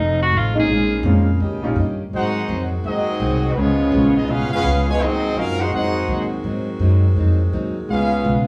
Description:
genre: jazz, big band swing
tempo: 167 BPM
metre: 4/4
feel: swing 63% on 8ths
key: unclear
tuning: A4 = 440 Hz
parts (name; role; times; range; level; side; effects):
- bright tenor saxophone; melody; 0.0-1.0 s; Eb4 to Ab4; -22 LUFS; equal; none
- fingerpicked plugged-in steel-string acoustic guitar; accompaniment; 0.0-8.5 s; F2 to G4; -27 LUFS; equal; none
- clear saxophone section; sustained chords; 0.0-8.5 s; Db3 to F5; -32 LUFS; equal; none
- upright bass; bass; 0.0-8.4 s; F1 to Ab2; -23 LUFS; equal; none
- clear grand piano; accompaniment; 0.5-1.8 s; G3 to F4; -24 LUFS; equal; none
- bright trumpet section; melody; 2.1-8.4 s; Cb4 to Ab5; -25 LUFS; equal; none
- dark trombone section; second line; 2.1-8.4 s; Cb3 to Gb4; -25 LUFS; equal; none
room: wet club reverb, RT60 0.8 s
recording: heard from further back in the room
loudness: -19 LUFS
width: mono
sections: 0.0-2.1 A section; 2.1-8.5 B section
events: tenor saxophone solo 0.0-2.1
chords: 0.0 F7; 0.7 Bbm7; 1.4 Eb7; 2.1 Ab7; 3.6 Db7; 5.0 Ab7; 7.9 Db7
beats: 0.33 | 0.69 1.05 1.41 1.77 | 2.13 2.49 2.85 3.21 | 3.57 3.93 4.29 4.64 | 5.00 5.36 5.72 6.08 | 6.44 6.80 7.16 7.52 | 7.88 8.23

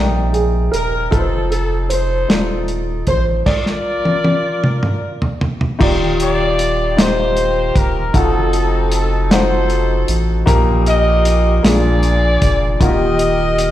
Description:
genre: slow gospel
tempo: 51 BPM (dotted quarters)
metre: 6/8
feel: straight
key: Eb major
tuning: A4 = 440 Hz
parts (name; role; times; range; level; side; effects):
- dark concert grand piano; melody; 0.0-5.4 s; G4 to D5; -23 LUFS; right 3 dB; slapback echo
- warm horn section; melody; 0.0-13.7 s; Bb3 to Eb5; -19 LUFS; left 1 dB; slapback echo
- warm upright piano; accompaniment; 0.0-13.7 s; Bb2 to G5; -19 LUFS; left 2 dB; slapback echo
- sub bass with octave; bass; 0.0-13.7 s; Eb1 to Bb1; -18 LUFS; equal; none
- warm soul drum kit; drums; 0.3-13.7 s; crash cymbal, hi-hat, kick drum, snare drum, toms; -16 LUFS; equal; none
room: light reverb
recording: live gig heard through the venue's PA, recital hall reverb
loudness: -13 LUFS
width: side -13 dB against mid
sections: 0.0-5.8 A section; 5.8-13.7 B section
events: drum fill 3.5-5.8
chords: 0.0 Cm7; 1.1 F7; 3.5 Bb; 5.8 Ebmaj9; 8.1 F7b9; 10.5 Eb/Bb; 11.6 Bb7; 12.8 Ebadd9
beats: | 1.12 2.29 | 3.46 4.63 | 5.80 6.97 | 8.14 9.31 | 10.47 11.64 | 12.81

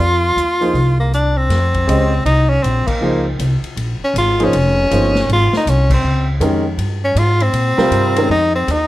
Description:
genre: modal jazz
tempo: 159 BPM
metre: 4/4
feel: swing 64% on 8ths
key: Bb dorian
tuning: A4 = 439 Hz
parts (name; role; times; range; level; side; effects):
- bright tenor saxophone; melody; 0.0-8.9 s; Bb3 to F4; -16 LUFS; equal; none
- upright bass; bass; 0.0-8.9 s; F1 to Bb2; -16 LUFS; equal; none
- swinging big-band drum kit; drums; 0.0-8.8 s; crash cymbal, hi-hat, kick drum, ride cymbal, snare drum; -26 LUFS; left 2 dB; none
- warm grand piano; accompaniment; 0.6-8.3 s; C3 to Eb5; -18 LUFS; right 1 dB; none
room: light reverb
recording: none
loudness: -13 LUFS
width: side -16 dB against mid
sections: 0.0-1.5 A section; 1.5-8.9 B section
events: band accent 2.8, 5.8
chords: 0.0 Bbsus2 (rootless); 1.5 Bbm9; 7.5 Abadd9 (rootless)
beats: | 0.00 0.38 0.76 1.13 | 1.51 1.89 2.26 2.64 | 3.02 3.39 3.77 4.15 | 4.52 4.90 5.28 5.66 | 6.03 6.41 6.79 7.16 | 7.54 7.92 8.29 8.67

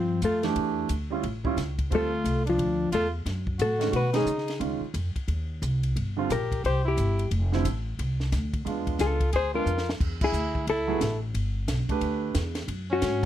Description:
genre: jazz, small-group swing and bop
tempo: 178 BPM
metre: 4/4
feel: swing 63% on 8ths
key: A major from 10.0 s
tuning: A4 = 439 Hz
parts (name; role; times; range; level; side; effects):
- hollow-body jazz guitar; melody; 0.0-13.3 s; F3 to C5; -27 LUFS; left 3 dB; none
- clear trumpet; second line; 0.0-13.3 s; C4 to G#4; -32 LUFS; right 2 dB; none
- upright bass; bass; 0.0-13.3 s; F1 to C#3; -28 LUFS; equal; none
- compact cocktail drum kit; drums; 0.2-13.3 s; crash cymbal, hi-hat, kick drum, ride cymbal, snare drum; -34 LUFS; equal; none
- warm concert grand piano; accompaniment; 0.4-13.3 s; D3 to B4; -29 LUFS; right 6 dB; none
room: little or no reverb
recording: none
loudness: -25 LUFS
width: side -11 dB against mid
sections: 0.0-10.0 A section; 10.0-13.3 B section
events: band accent 4.1, 10.2; drum fill 9.7-10.0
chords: 0.0 Fmaj9; 0.6 Em7; 1.2 A7b13; 1.9 Dm7; 3.3 Gbm; 3.9 Badd9; 4.6 Dbmaj9; 6.0 Gm7; 6.6 C; 7.3 F; 8.7 E7b9; 10.0 Amaj7; 11.3 Gadd9; 12.7 F#sus2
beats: 0.22 | 0.56 0.89 1.23 1.57 | 1.91 2.24 2.58 2.92 | 3.26 3.60 3.93 4.27 | 4.61 4.95 5.29 5.62 | 5.96 6.30 6.63 6.97 | 7.31 7.65 7.98 8.32 | 8.66 8.99 9.33 9.66 | 10.00 10.34 10.67 11.01 | 11.34 11.68 12.01 12.35 | 12.68 13.02

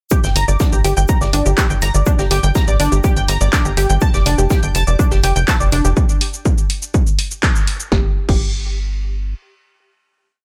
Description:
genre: melodic techno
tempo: 123 BPM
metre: 4/4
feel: straight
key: G minor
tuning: A4 = 440 Hz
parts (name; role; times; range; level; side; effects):
- tight sequenced synth; arpeggios; 0.1-8.4 s; D4 to Bb6; -23 LUFS; equal; chorus, sidechain pumping, digital delay
- electronic kick drum; drums; 0.1-8.4 s; none; -18 LUFS; equal; small room ambience
- punchy analog drum machine; drums; 0.1-8.4 s; crash cymbal, handclaps, hi-hat, shaker, snare drum; -25 LUFS; equal; small room ambience
- shaker and snare drum; drums; 0.1-5.8 s; none; -34 LUFS; equal; high-pass filter on snare, small room ambience, sidechain pumping on perc, high-pass filter on perc, high-pass filter on room
- tight sequencer bass; bass; 0.2-9.3 s; F1 to A1; -20 LUFS; equal; sidechain pumping
room: digital ambience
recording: none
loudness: -16 LUFS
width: mono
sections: 0.1-7.9 drop; 7.9-10.4 final note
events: drop 0.1-7.9; band accent 7.4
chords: 0.1 Gm; 4.0 F; 7.9 N.C.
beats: | 0.11 0.60 1.09 1.58 | 2.06 2.55 3.04 3.53 | 4.02 4.50 4.99 5.48 | 5.97 6.46 6.94 7.43 | 7.92 8.41 8.89

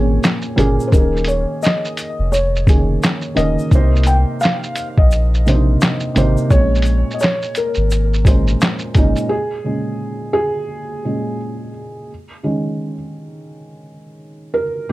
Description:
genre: lo-fi hip hop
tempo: 86 BPM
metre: 4/4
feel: swing 63% on 16ths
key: Bb minor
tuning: A4 = 439 Hz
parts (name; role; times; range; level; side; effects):
- felt-muted upright piano; melody; 0.0-8.6 s; Bb4 to G5; -22 LUFS; left 1 dB; low-pass filter, analog delay, plate reverb
- felt-muted upright piano; accompaniment; 0.0-14.9 s; Bb2 to Db5; -20 LUFS; right 1 dB; cassette tape, low-pass filter
- soft dub sub bass; bass; 0.0-9.2 s; Eb1 to C2; -16 LUFS; equal; none
- lo-fi sampler-style drum kit; drums; 0.2-9.3 s; handclaps, hi-hat, kick drum, shaker, snare drum; -15 LUFS; equal; none
- egg shaker; percussion; 0.2-9.3 s; none; -39 LUFS; left 6 dB; none
room: light reverb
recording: cassette tape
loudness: -14 LUFS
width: side -17 dB against mid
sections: 0.0-9.3 A section; 9.3-14.9 B section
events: felt piano solo 9.3-14.9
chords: 0.0 Bbm7; 0.9 Eb7sus4; 3.7 Cm7; 6.5 Bbm9; 9.3 Bbm7; 12.1 Eb7sus4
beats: 0.23 | 0.93 1.62 2.32 3.02 | 3.72 4.42 5.11 5.81 | 6.51 7.21 7.90 8.60 | 9.30 10.00 10.69 11.39 | 12.09 12.79 13.48 14.18 | 14.88

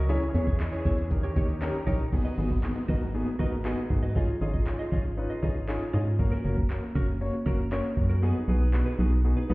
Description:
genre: dance-pop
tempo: 118 BPM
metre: 4/4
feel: straight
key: G# dorian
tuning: A4 = 441 Hz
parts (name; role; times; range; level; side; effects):
- filtered supersaw swell; sustained chords; 0.0-2.1 s; D#3 to G#4; -39 LUFS; right 1 dB; sidechain pumping
- direct-recorded clean electric guitar; riff; 0.0-9.5 s; C#4 to D#5; -37 LUFS; right 2 dB; lush chorus
- organ-like FM bass; bass; 0.0-9.5 s; F#1 to G#2; -27 LUFS; equal; sidechain pumping
- warm grand piano; accompaniment; 0.1-9.5 s; A#3 to D#5; -32 LUFS; left 2 dB; sidechain pumping
- smooth R&B drum kit; drums; 0.1-8.9 s; handclaps, hi-hat, kick drum; -29 LUFS; equal; none
- downlifter; sound effects; 2.1-6.2 s; none; -40 LUFS; equal; none
room: light reverb, digital ambience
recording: heard muffled through a wall, stone room reverb, EQ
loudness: -25 LUFS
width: side -21 dB against mid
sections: 0.0-2.1 A section; 2.1-9.5 B section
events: kick muted 8.2-9.5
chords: 0.1 C#m; 1.1 D#7; 2.1 G#m7; 4.2 C#add9/G#; 6.2 F#; 8.2 B6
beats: | 0.09 0.60 1.11 1.62 | 2.12 2.63 3.14 3.65 | 4.16 4.67 5.18 5.68 | 6.19 6.70 7.21 7.72 | 8.23 8.73 9.24

